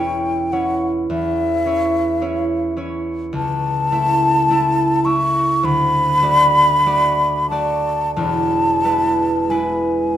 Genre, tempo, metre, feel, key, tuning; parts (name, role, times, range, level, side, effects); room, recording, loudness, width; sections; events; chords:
classical, romantic duo for flute and harp; 45-54 BPM; 4/4; rubato; A major from 3.4 s; A4 = 441 Hz
mellow hollow concert flute; melody; 0.0-10.2 s; E5+20c to C#6; -17 LUFS; left 1 dB
concert harp; accompaniment; 0.0-10.2 s; E1 to E5; -19 LUFS; right 2 dB
light reverb; close, detailed microphones; -15 LUFS; side -11 dB against mid
0.0-10.2 A section
0.0 C#m/E; 3.4 A/C#; 5.6 D; 8.2 E